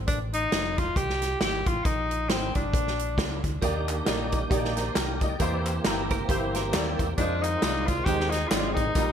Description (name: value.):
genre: uptempo gospel.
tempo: 135 BPM.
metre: 4/4.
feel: swing 58% on 8ths.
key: Eb major.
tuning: A4 = 438 Hz.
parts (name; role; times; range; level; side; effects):
fingered electric bass; bass; 0.0-9.1 s; F1 to F2; -32 LUFS; equal; none.
clear tenor saxophone; melody; 0.1-3.4, 7.2-9.1 s; C4 to G4; -28 LUFS; left 1 dB; digital delay.
natural country drum kit; drums; 0.1-9.1 s; hi-hat, kick drum, snare drum; -28 LUFS; equal; gated reverb.
clear upright piano; accompaniment; 3.6-9.1 s; Bb2 to Bb5; -30 LUFS; equal; ensemble chorus.
tonewheel organ; sustained chords; 3.6-9.1 s; Eb3 to D5; -33 LUFS; right 3 dB; slow rotary speaker, chorus vibrato.
tambourine and handclaps; percussion; 3.6-9.1 s; none; -40 LUFS; left 4 dB; none.
direct-recorded clean electric guitar; second line; 6.1-7.2 s; G4 to C5; -35 LUFS; right 6 dB; wide subtle chorus.
room: light reverb, small room ambience.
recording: bright 1980s-style digital production.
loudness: -24 LUFS.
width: side -8 dB against mid.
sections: 0.0-9.1 A section.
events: none.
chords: 0.1 F7; 1.9 Eb/Bb; 2.7 Bb; 3.6 Ebmaj7; 5.4 C7; 7.2 Fm7; 8.1 Ab/Eb.